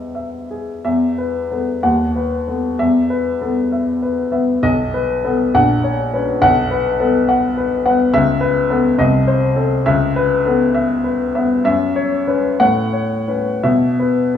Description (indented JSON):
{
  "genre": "classical, romantic character piece for solo piano",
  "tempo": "56-72 BPM (dotted quarters)",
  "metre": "6/8",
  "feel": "rubato",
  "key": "unclear",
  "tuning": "A4 = 444 Hz",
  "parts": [
    { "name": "warm upright piano", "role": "solo", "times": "0.0-14.4 s", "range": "A#1 to F#5", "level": "-14 LUFS", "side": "left 2 dB", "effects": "none" }
  ],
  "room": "wet recital hall reverb, RT60 1.4 s",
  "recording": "small room ambience",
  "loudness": "-14 LUFS",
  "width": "side -9 dB against mid",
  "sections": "0.8-14.4 A section",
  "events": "none",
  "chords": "0.0 E; 0.8 E5; 1.8 B/D#; 2.8 E5; 4.6 B; 5.5 F#/A#; 6.4 B5; 8.1 C#m7; 9.0 Cm6; 9.9 C#m7; 11.6 F#5; 12.6 F#m/A; 13.6 E5/B"
}